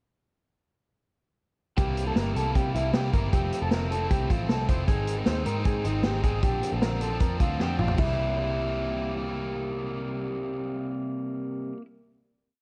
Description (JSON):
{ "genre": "jangly indie pop", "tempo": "154 BPM", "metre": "4/4", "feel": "straight", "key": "C mixolydian", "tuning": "A4 = 439 Hz", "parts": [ { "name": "overdriven electric guitar", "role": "accompaniment", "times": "1.8-11.9 s", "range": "Ab2 to E4", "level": "-34 LUFS", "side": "equal", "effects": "none" }, { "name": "electric guitar through a small old amp", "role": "arpeggios", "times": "1.8-9.1 s", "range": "Eb4 to C5", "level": "-34 LUFS", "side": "equal", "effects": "analog delay" }, { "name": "vintage muted picked electric bass", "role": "bass", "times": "1.8-11.7 s", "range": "F1 to C3", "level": "-32 LUFS", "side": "equal", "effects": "none" }, { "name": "vintage drum kit", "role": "drums", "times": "1.8-8.1 s", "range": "crash cymbal, hi-hat, kick drum, snare drum, toms", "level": "-30 LUFS", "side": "equal", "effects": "none" } ], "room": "light reverb, studio ambience", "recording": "cassette tape", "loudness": "-27 LUFS", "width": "mono", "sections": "1.8-8.0 verse; 8.0-11.1 final chord", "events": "drum fill 7.6-8.0", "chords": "1.8 C7; 3.3 Fmaj7; 4.9 Ab; 6.4 Bbadd9; 8.0 C7" }